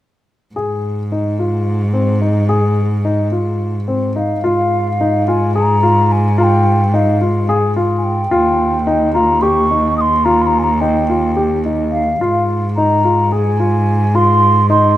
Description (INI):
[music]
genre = contemporary instrumental, chamber music in an uneven meter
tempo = 216 BPM (eighths)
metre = 7/8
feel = straight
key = Ab major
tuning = A4 = 440 Hz
[part]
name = dark grand piano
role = arpeggios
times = 0.6-14.9 s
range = C4 to Ab4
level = -17 LUFS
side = left 2 dB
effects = none
[part]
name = rich cello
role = bass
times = 0.6-15.0 s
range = Eb2 to Ab2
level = -16 LUFS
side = equal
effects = none
[part]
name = mellow hollow wooden flute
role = melody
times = 4.2-15.0 s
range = F5 to Eb6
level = -16 LUFS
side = equal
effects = none
[sound]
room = light reverb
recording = close, detailed microphones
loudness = -12 LUFS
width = side -13 dB against mid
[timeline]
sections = 0.6-4.4 A section; 4.4-15.0 B section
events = none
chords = 0.6 Ab5; 8.3 Eb; 12.2 Ab6